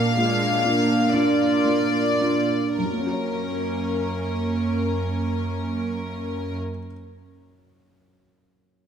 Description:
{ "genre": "cinematic, emotional film score for orchestra", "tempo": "34-45 BPM (dotted quarters)", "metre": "6/8", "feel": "rubato", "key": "F# major", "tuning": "A4 = 439 Hz", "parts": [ { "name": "clear studio violin section", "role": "melody", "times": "0.0-6.6 s", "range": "A#4 to E#5", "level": "-26 LUFS", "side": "left 5 dB", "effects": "none" }, { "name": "felt-muted upright piano", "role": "accompaniment", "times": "0.0-8.9 s", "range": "F#2 to C#5", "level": "-24 LUFS", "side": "right 2 dB", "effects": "none" }, { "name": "rich studio viola section", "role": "accompaniment", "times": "0.0-6.6 s", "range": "G#3 to E#4", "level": "-28 LUFS", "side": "right 1 dB", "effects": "none" }, { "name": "warm studio cello section", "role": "bass", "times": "0.0-6.5 s", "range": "F#2 to A#2", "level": "-29 LUFS", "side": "right 3 dB", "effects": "none" } ], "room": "moderate scoring stage reverb, RT60 2.1 s", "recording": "none", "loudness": "-21 LUFS", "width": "side -8 dB against mid", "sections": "0.0-2.8 A section; 2.8-6.1 B section", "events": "slowing down 0.0-2.8", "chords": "0.0 A#; 2.8 F#", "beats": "1.13 | 2.77 4.42" }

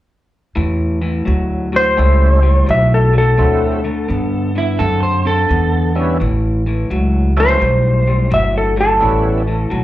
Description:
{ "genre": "electric blues shuffle", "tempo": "85 BPM", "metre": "4/4", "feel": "swing 66% on 8ths", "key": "unclear", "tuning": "A4 = 440 Hz", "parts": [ { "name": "electric guitar through a small old amp", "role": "riff", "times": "0.6-9.8 s", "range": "A2 to C4", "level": "-21 LUFS", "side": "left 2 dB", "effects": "slapback echo" }, { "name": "upright bass", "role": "bass", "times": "0.6-9.8 s", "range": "G1 to G2", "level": "-15 LUFS", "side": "equal", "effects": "none" }, { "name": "clean lap steel guitar", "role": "melody", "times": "1.8-9.8 s", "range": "A4 to E5", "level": "-16 LUFS", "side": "left 1 dB", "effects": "slapback echo" }, { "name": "overdriven tonewheel organ", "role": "accompaniment", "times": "2.0-9.4 s", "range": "F#3 to E4", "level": "-21 LUFS", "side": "right 4 dB", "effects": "slow rotary speaker, chorus vibrato, slapback echo" }, { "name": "electric slide guitar", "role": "second line", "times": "4.6-6.0 s", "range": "E4 to C5", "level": "-18 LUFS", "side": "right 3 dB", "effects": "slapback echo" } ], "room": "light reverb", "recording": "live gig heard through the venue's PA, club reverb", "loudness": "-12 LUFS", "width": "side -14 dB against mid", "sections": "0.6-9.8 A section", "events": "none", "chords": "0.6 A9; 3.4 D9; 6.2 A9", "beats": "| 0.57 1.28 1.98 2.69 | 3.39 4.09 4.80 5.50 | 6.21 6.91 7.61 8.31 | 9.01 9.71" }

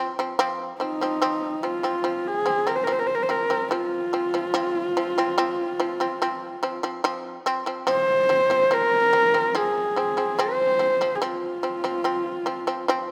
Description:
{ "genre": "mongolian traditional, Mongolian folk", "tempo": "72 BPM", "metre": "4/4", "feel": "straight", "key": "F yu mode", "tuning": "A4 = 440 Hz", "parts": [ { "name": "shamisen", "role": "arpeggios", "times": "0.0-13.1 s", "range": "F3 to C4", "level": "-29 LUFS", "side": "equal", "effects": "none" }, { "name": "dark horsehead fiddle", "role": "melody", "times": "0.8-13.1 s", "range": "Eb4 to C5", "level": "-25 LUFS", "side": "equal", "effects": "none" } ], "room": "moderate concert hall reverb, RT60 1.9 s", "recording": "close, detailed microphones", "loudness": "-24 LUFS", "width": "mono", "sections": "0.4-13.1 A section", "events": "none", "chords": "0.4 F5", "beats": "| 0.39 1.22 2.05 2.88 | 3.71 4.55 5.38 6.21 | 7.05 7.88 8.71 9.55 | 10.38 11.22 12.05 12.89" }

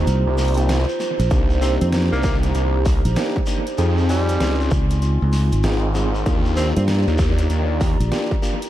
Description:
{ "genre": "glitch hop", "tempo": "97 BPM", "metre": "4/4", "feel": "swing 64% on 16ths", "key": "C minor", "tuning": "A4 = 441 Hz", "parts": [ { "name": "warbly tape-like pad", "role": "sustained chords", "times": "0.0-8.7 s", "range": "F4 to C6", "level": "-28 LUFS", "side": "right 2 dB", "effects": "chorus, built-in reverb, vintage 12-bit sampler grit, sidechain pumping" }, { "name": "bell-like tine electric piano", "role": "stabs", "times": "0.0-8.6 s", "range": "Bb3 to Ab5", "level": "-26 LUFS", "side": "equal", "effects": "fast stereo tremolo, sidechain pumping, analog delay" }, { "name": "phased detuned saw bass", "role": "bass", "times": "0.0-8.0 s", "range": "Ab1 to F2", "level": "-19 LUFS", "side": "equal", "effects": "phaser, tube saturation" }, { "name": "modern bright fingered electric bass", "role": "bass", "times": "0.1-8.1 s", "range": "Ab1 to G2", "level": "-18 LUFS", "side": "equal", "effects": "none" }, { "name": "dubstep drum kit", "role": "drums", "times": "0.1-8.7 s", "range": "hi-hat, snare drum", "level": "-30 LUFS", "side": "equal", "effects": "overdrive, analog delay" }, { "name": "shekere", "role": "percussion", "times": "0.1-8.7 s", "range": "none", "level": "-35 LUFS", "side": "left 2 dB", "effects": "analog delay" }, { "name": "electronic kick drum", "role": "drums", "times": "1.3-8.4 s", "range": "none", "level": "-20 LUFS", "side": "equal", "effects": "overdrive" }, { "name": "clear tenor saxophone", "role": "melody", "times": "1.6-6.8 s", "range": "G3 to C4", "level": "-29 LUFS", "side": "equal", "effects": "analog delay" } ], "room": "digital ambience", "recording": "echo-heavy mix, vinyl crackle", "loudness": "-17 LUFS", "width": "side -13 dB against mid", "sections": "0.0-8.7 A section", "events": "none", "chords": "0.0 F7sus4; 1.3 Cm7; 3.8 Dbmaj9; 6.3 Ebmaj7", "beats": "0.07 0.69 | 1.31 1.93 2.55 3.17 | 3.79 4.40 5.02 5.64 | 6.26 6.88 7.50 8.12" }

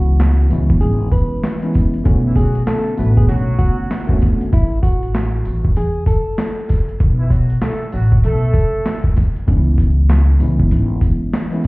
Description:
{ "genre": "hip hop, boom-bap hip-hop", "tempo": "97 BPM", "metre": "4/4", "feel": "swing 61% on 16ths", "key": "B dorian", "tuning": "A4 = 439 Hz", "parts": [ { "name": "semi-hollow electric guitar", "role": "melody", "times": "0.0-7.0 s", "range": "E4 to B4", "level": "-25 LUFS", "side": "equal", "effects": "high-pass filter, low-pass filter, slapback echo" }, { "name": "mellow tine electric piano", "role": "accompaniment", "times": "0.0-4.6, 9.5-11.7 s", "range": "D3 to F#4", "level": "-21 LUFS", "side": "equal", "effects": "slow stereo tremolo, cassette tape, high-pass filter, low-pass filter" }, { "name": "upright bass", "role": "bass", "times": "0.0-11.0 s", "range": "G#1 to E2", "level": "-15 LUFS", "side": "equal", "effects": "none" }, { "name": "boom bap sampler-style drum kit", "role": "drums", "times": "0.2-11.7 s", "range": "handclaps, hi-hat, kick drum, snare drum", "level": "-16 LUFS", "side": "equal", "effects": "none" }, { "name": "tambourine", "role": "percussion", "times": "0.5-11.7 s", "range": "none", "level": "-61 LUFS", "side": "left 3 dB", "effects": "none" }, { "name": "dark horn section", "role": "stabs", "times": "2.2-9.0 s", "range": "E3 to B4", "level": "-26 LUFS", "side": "right 1 dB", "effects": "high-pass filter, low-pass filter, slapback echo" } ], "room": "small room ambience", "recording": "heard muffled through a wall, club reverb, vinyl crackle, EQ", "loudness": "-13 LUFS", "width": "side -23 dB against mid", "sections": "0.0-11.7 A section", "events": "none", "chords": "0.0 C#m7; 2.1 Bm7; 4.5 A5; 7.0 B5; 9.5 C#m7", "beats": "0.20 0.82 1.44 | 2.05 2.67 3.29 3.91 | 4.53 5.15 5.76 6.38 | 7.00 7.62 8.24 8.86 | 9.48 10.09 10.71 11.33" }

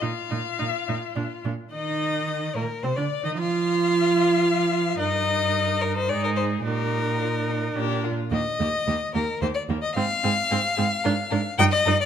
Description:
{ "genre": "quick classical-period movement for string quartet", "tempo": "110 BPM", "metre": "3/4", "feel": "straight", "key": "Eb major", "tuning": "A4 = 435 Hz", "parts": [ { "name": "rich violin", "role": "melody", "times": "0.0-11.9 s", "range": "Eb4 to F5", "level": "-32 LUFS", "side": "left 11 dB", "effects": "none" }, { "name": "rich violin", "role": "second line", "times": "0.0-12.1 s", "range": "F4 to G5", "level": "-26 LUFS", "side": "left 5 dB", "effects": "none" }, { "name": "clear viola", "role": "accompaniment", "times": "0.0-11.9 s", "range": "Bb3 to F4", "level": "-27 LUFS", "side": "right 2 dB", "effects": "none" }, { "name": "rich cello", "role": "bass", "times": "0.0-11.9 s", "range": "Eb2 to F3", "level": "-27 LUFS", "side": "right 5 dB", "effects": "none" } ], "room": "moderate recital hall reverb, RT60 1.7 s", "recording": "close, detailed microphones", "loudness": "-22 LUFS", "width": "side -9 dB against mid", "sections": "0.0-1.7 A section; 1.7-12.1 B section", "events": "none", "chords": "0.0 Bbsus4; 1.2 Bb; 1.7 Eb5; 3.4 N.C.; 5.0 Eb/G; 6.1 Ab5; 6.6 Eb/Bb; 7.8 Bb; 8.3 Eb; 10.0 Fm/Ab; 11.0 Bb7/Ab (rootless)", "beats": "| 0.02 0.60 1.16 | 1.73 2.28 2.83 | 3.38 3.92 4.46 | 5.00 5.55 6.10 | 6.65 7.21 7.76 | 8.32 8.87 9.42 | 9.96 10.51 11.05 | 11.59" }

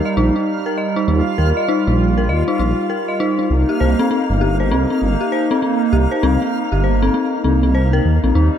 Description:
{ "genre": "IDM", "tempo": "99 BPM", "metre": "4/4", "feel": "swing 62% on 16ths", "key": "unclear", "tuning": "A4 = 440 Hz", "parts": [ { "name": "hollow soft pad", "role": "sustained chords", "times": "0.0-8.6 s", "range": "G3 to F4", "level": "-20 LUFS", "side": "right 2 dB", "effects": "chorus" }, { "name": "backwards swelling texture", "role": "texture", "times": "0.0-8.4 s", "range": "F5", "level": "-28 LUFS", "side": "right 2 dB", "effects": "built-in reverb" }, { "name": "dark detuned synth bell", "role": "arpeggios", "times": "0.1-8.5 s", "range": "C4 to Eb5", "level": "-19 LUFS", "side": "left 2 dB", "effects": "chorus, tape echo" }, { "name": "dark detuned saw bass", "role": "bass", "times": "0.2-8.5 s", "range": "G1 to Eb2", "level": "-16 LUFS", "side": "equal", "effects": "none" } ], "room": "light reverb", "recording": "dark, warm production", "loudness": "-14 LUFS", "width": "side -9 dB against mid", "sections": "0.0-8.4 A section", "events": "none", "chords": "0.0 Eb; 3.5 Cm7", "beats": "0.47 | 1.08 1.69 2.29 2.90 | 3.50 4.11 4.71 5.32 | 5.93 6.53 7.14 7.75 | 8.35" }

